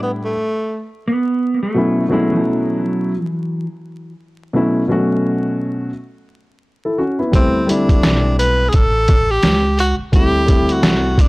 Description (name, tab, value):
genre	hip hop, jazz-hop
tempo	86 BPM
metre	4/4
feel	swing 60% on 16ths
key	unclear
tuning	A4 = 440 Hz
part	breathy tenor saxophone	melody	0.0-0.9, 7.4-11.3 s	A3 to B4	-18 LUFS	equal	none
part	dark concert grand piano	accompaniment	0.0-11.3 s	A2 to A4	-17 LUFS	left 1 dB	none
part	mellow electric guitar	second line	1.1-3.7 s	F#3 to B3	-20 LUFS	right 2 dB	analog delay
part	upright bass	bass	7.3-11.3 s	A1 to D2	-19 LUFS	equal	none
part	trip hop sampler-style drum kit	drums	7.3-11.3 s	hi-hat, kick drum, snare drum	-14 LUFS	equal	none
room	studio reverb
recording	dry, gritty hardware recording, vinyl crackle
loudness	-14 LUFS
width	side -22 dB against mid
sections	0.0-11.3 A section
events	none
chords	0.0 A9sus4; 1.8 B9sus4; 7.3 D9sus4